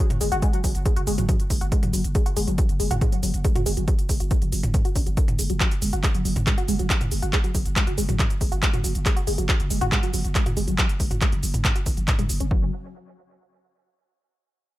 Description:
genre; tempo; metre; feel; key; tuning
driving peak-time techno; 139 BPM; 4/4; straight; unclear; A4 = 440 Hz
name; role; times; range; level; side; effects
tight sequenced synth; riff; 0.0-12.7 s; E3 to F#4; -29 LUFS; equal; chorus, phaser, tube saturation, sidechain pumping, dub echo
growling 808-style bass; bass; 0.1-12.7 s; F#1; -27 LUFS; equal; sidechain pumping, low-pass filter
techno drum kit; drums; 0.1-12.5 s; handclaps, hi-hat, shaker, toms; -27 LUFS; equal; small room ambience
electronic kick drum; drums; 0.4-12.6 s; none; -22 LUFS; equal; small room ambience
room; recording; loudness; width
little or no reverb; none; -20 LUFS; side -16 dB against mid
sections
0.0-12.5 A section; 12.5-14.2 B section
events
filter sweep on synth arpeggio sound 0.0-12.5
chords
none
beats
| 0.42 0.85 1.29 1.72 | 2.15 2.58 3.01 3.44 | 3.88 4.31 4.74 5.17 | 5.60 6.04 6.47 6.90 | 7.33 7.76 8.19 8.62 | 9.06 9.49 9.92 10.35 | 10.78 11.21 11.65 12.08 | 12.51

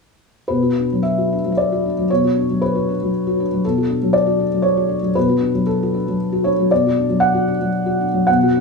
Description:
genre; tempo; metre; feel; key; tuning
neoclassical minimalist piano; 116 BPM; 3/4; rubato; B minor; A4 = 440 Hz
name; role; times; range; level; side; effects
felt-muted upright piano; solo; 0.5-8.6 s; B2 to F#5; -15 LUFS; left 1 dB; none
room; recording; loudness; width
moderate studio reverb, RT60 0.7 s; band playing live in one room, small room ambience; -16 LUFS; side -4 dB against mid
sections
0.5-8.6 A section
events
none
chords
0.5 Bm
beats
| 0.50 1.04 1.57 | 2.09 2.61 3.12 | 3.64 4.14 4.64 | 5.16 5.68 6.19 | 6.71 7.22 7.74 | 8.28

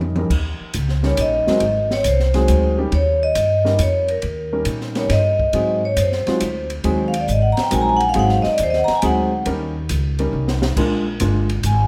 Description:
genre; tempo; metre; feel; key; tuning
jazz, small-group swing and bop; 138 BPM; 3/4; swing 68% on 8ths; Eb major; A4 = 442 Hz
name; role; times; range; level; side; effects
warm concert grand piano; accompaniment; 0.0-11.5 s; Gb3 to Bb4; -25 LUFS; equal; none
upright bass; bass; 0.0-11.9 s; G1 to Bb2; -23 LUFS; equal; none
open jazz drum kit; drums; 0.0-11.8 s; crash cymbal, hi-hat, kick drum, ride cymbal, snare drum, toms; -30 LUFS; equal; none
vibraphone with medium hard mallets; melody; 1.1-9.4, 11.7-11.9 s; Bb4 to Bb5; -21 LUFS; equal; none
room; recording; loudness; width
moderate large studio reverb, RT60 1.2 s; none; -19 LUFS; mono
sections
0.3-11.9 A section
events
drum fill 0.0-0.3, 10.3-10.8; vibraphone solo 0.3-11.9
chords
0.3 Eb7; 1.6 Ab7; 2.9 Eb7; 5.5 Ab7; 9.5 Eb7; 10.8 Bb7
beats
| 0.30 0.74 1.18 | 1.61 2.05 2.48 | 2.92 3.36 3.79 | 4.23 4.67 5.10 | 5.54 5.97 6.41 | 6.85 7.29 7.72 | 8.16 8.59 9.03 | 9.46 9.90 10.34 | 10.77 11.21 11.64

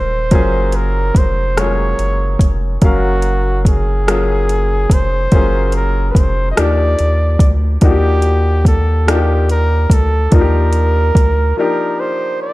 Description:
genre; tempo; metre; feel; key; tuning
slow six-eight R&B; 48 BPM (dotted quarters); 6/8; straight; unclear; A4 = 441 Hz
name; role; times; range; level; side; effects
warm flugelhorn; melody; 0.0-12.5 s; Gb4 to Eb5; -19 LUFS; right 1 dB; none
warm baby grand piano; accompaniment; 0.0-12.5 s; F3 to F5; -20 LUFS; left 3 dB; none
round analog bass; bass; 0.0-11.5 s; Eb1 to Eb2; -15 LUFS; equal; none
smooth R&B drum kit; drums; 0.3-11.4 s; hi-hat, kick drum, rim click; -13 LUFS; equal; none
room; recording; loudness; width
little or no reverb; dark, warm production; -11 LUFS; side -19 dB against mid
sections
0.0-12.5 A section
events
break 11.6-12.5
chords
0.3 Gbmaj9; 6.6 Ebmaj9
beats
| 0.32 1.57 | 2.82 4.07 | 5.32 6.57 | 7.82 9.07 | 10.32 11.57

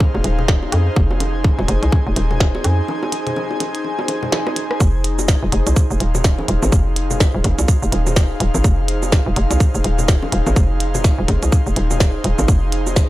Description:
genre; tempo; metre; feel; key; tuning
minimal techno; 125 BPM; 4/4; swing 59% on 16ths; F minor; A4 = 440 Hz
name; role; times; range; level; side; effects
electronic kick drum; drums; 0.0-13.1 s; none; -15 LUFS; equal; none
bongos and congas; percussion; 0.0-12.9 s; none; -27 LUFS; left 1 dB; none
airy breathy pad; texture; 0.0-13.1 s; Eb4 to Ab5; -24 LUFS; equal; chorus, sidechain pumping
hollow knocking FM bass; bass; 0.1-13.0 s; Eb1 to F2; -18 LUFS; equal; sidechain pumping
minimal click drum kit; drums; 0.2-13.1 s; hi-hat, rim click, shaker, snare drum; -22 LUFS; right 1 dB; none
room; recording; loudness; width
digital ambience; dry, gritty hardware recording, transformer saturation; -15 LUFS; side -16 dB against mid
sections
0.0-4.8 A section; 4.8-13.1 B section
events
break 2.9-4.8; drum fill 4.3-4.8; drop 4.8-13.1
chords
0.0 Fm7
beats
0.00 0.48 | 0.96 1.44 1.92 2.40 | 2.88 3.36 3.84 4.32 | 4.80 5.28 5.76 6.24 | 6.72 7.20 7.68 8.16 | 8.64 9.12 9.60 10.08 | 10.56 11.04 11.52 12.00 | 12.48 12.96

